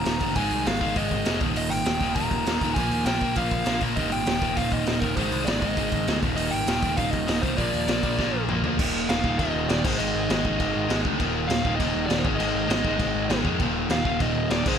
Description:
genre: punk rock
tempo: 199 BPM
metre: 4/4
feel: straight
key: unclear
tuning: A4 = 440 Hz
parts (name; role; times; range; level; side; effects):
- biting lead guitar; melody; 0.0-14.8 s; Bb4 to Bb5; -29 LUFS; right 1 dB; overdrive
- crunchy overdriven guitar; riff; 0.0-14.8 s; Eb2 to Bb3; -27 LUFS; left 12 dB; none
- crunchy overdriven guitar; riff; 0.0-14.8 s; Eb2 to Bb3; -29 LUFS; right 18 dB; none
- growling picked electric bass; bass; 0.0-14.8 s; Eb1 to F2; -31 LUFS; equal; overdrive
- raw garage drum kit; drums; 0.1-14.7 s; crash cymbal, hi-hat, kick drum, snare drum, toms; -28 LUFS; equal; none
room: light reverb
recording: none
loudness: -22 LUFS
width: side -8 dB against mid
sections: 0.0-8.8 A section; 8.8-14.8 B section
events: drum fill 8.2-8.8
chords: 0.4 Ab; 1.4 Eb; 2.8 Bb5; 4.0 Eb; 5.2 Ab; 6.2 Eb; 7.6 Bb; 8.8 Eb5; 9.8 Ab5; 11.2 Eb5; 12.2 Ab5; 13.6 Eb5

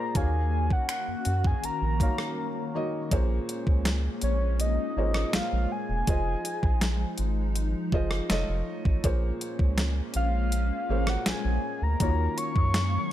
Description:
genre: contemporary R&B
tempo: 81 BPM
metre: 4/4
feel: straight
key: Bb minor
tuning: A4 = 440 Hz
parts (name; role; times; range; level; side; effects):
- soft octave-layered synth lead; melody; 0.0-13.1 s; Db5 to Db6; -32 LUFS; left 1 dB; chorus
- felt-muted upright piano; accompaniment; 0.0-13.1 s; Bb2 to F5; -34 LUFS; equal; none
- hollow soft pad; sustained chords; 0.0-13.1 s; Eb3 to F5; -36 LUFS; left 2 dB; ensemble chorus
- clean 12-bit digital drum machine; drums; 0.1-12.9 s; finger snaps, hi-hat, kick drum, rim click, snare drum; -28 LUFS; equal; overdrive
- round analog bass; bass; 0.2-13.0 s; E1 to Gb2; -27 LUFS; equal; none
room: little or no reverb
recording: none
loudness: -25 LUFS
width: side -12 dB against mid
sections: 0.0-3.1 A section; 3.1-13.1 B section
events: break 2.4-3.1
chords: 0.1 Ebm7; 3.1 Bbm9; 6.1 Fm7; 8.3 F7b13; 9.0 Bbm9; 12.0 Ebm9

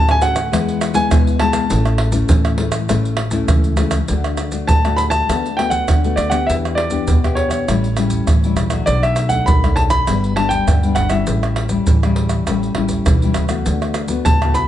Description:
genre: samba and choro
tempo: 100 BPM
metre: 4/4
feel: straight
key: A major, D major from 4.1 s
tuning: A4 = 441 Hz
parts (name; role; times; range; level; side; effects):
- warm baby grand piano; melody; 0.0-14.7 s; C#5 to B5; -19 LUFS; equal; none
- nylon-string guitar; accompaniment; 0.0-14.7 s; F#2 to G4; -20 LUFS; left 5 dB; none
- upright bass; bass; 0.0-14.7 s; G1 to D3; -21 LUFS; equal; none
- maracas, pandeiro, tamborim and surdo; percussion; 0.1-14.7 s; none; -18 LUFS; right 1 dB; none
room: light reverb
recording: nothing above 10.4 kHz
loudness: -14 LUFS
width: side -12 dB against mid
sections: 0.0-4.1 A section; 4.1-14.7 B section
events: none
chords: 0.0 Dmaj7; 0.5 E; 1.7 A; 4.1 D; 5.3 Bm7/D; 6.5 Em7; 7.7 A7; 8.9 Bm7; 10.1 G; 11.3 A7; 13.7 D6

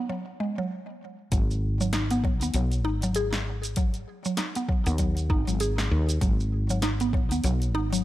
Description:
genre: organic downtempo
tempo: 98 BPM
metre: 4/4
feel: swing 59% on 16ths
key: G# minor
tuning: A4 = 436 Hz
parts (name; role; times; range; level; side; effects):
- mallet-like synth pluck; arpeggios; 0.0-8.0 s; F#3 to G#4; -29 LUFS; equal; chorus, phaser, cassette tape, digital delay
- woody fretless electric bass; bass; 1.3-8.0 s; G#1 to D#2; -26 LUFS; equal; sidechain pumping
- deep house drum kit; drums; 1.3-8.0 s; hi-hat, shaker, snare drum; -33 LUFS; equal; none
- electronic kick drum; drums; 1.3-7.3 s; none; -26 LUFS; equal; none
room: digital ambience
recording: none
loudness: -24 LUFS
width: side -15 dB against mid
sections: 0.0-1.3 A section; 1.3-8.0 B section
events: filter sweep on synth pluck 0.0-1.3; stop 0.7-1.3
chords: 0.0 G#7(no3); 1.3 G#m7

